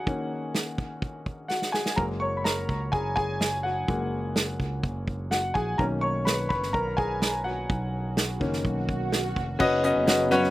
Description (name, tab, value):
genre	piano-driven pop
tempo	126 BPM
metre	4/4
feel	straight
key	unclear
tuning	A4 = 440 Hz
part	clear grand piano	accompaniment	0.0-10.5 s	D#3 to C#6	-27 LUFS	left 1 dB	none
part	unplugged drum kit	drums	0.1-10.5 s	crash cymbal, hi-hat, kick drum, snare drum	-28 LUFS	right 1 dB	none
part	fingered electric bass	bass	2.0-10.5 s	E#1 to F#2	-32 LUFS	right 1 dB	none
part	swell	sound effects	8.1-9.6 s	none	-35 LUFS	right 5 dB	none
part	lush unison pad	sustained chords	9.6-10.5 s	C#3 to D#4	-30 LUFS	right 2 dB	chorus
room	little or no reverb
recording	recorded outdoors, with no room sound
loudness	-24 LUFS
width	side -16 dB against mid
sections	0.0-9.6 A section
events	grand piano solo 0.0-9.6; drum fill 1.5-2.0; swell 8.1-9.6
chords	0.0 D#madd11; 2.0 F#add9; 5.8 Bmaj7; 9.6 Badd9/F#